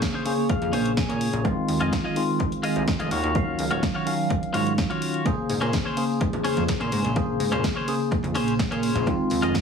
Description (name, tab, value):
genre	filtered disco house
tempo	126 BPM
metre	4/4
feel	straight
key	Bb minor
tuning	A4 = 440 Hz
part	bright tine electric piano	accompaniment	0.0-9.6 s	Db3 to F5	-25 LUFS	equal	medium stereo tremolo, phaser, vintage 12-bit sampler grit, sidechain pumping, low-pass filter
part	twelve-string electric guitar	riff	0.0-9.5 s	Db4 to Ab5	-29 LUFS	left 2 dB	sidechain pumping, low-pass filter
part	electronic kick drum	drums	0.0-9.6 s	none	-27 LUFS	equal	overdrive, studio reverb
part	house drum kit	drums	0.0-9.6 s	hi-hat, snare drum	-32 LUFS	right 1 dB	sidechain pumping on hats, studio reverb
part	plucky analog bass	bass	0.6-9.5 s	Eb1 to Bb2	-28 LUFS	right 1 dB	sidechain pumping, low-pass filter
part	tambourine and congas	percussion	5.3-9.6 s	none	-36 LUFS	right 5 dB	sidechain pumping on perc, low-pass filter on perc
room	light reverb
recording	heavily compressed radio sound, multiband compression, small room ambience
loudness	-22 LUFS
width	side -6 dB against mid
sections	0.0-9.6 A section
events	clean electric guitar fill 0.0-1.4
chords	0.0 Bbm9; 1.4 Fm7; 3.1 Ebm9; 5.3 Bbm9; 9.1 Fm7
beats	0.02 0.50 0.97 | 1.45 1.93 2.40 2.88 | 3.35 3.83 4.31 4.78 | 5.26 5.73 6.21 6.69 | 7.16 7.64 8.12 8.59 | 9.07 9.54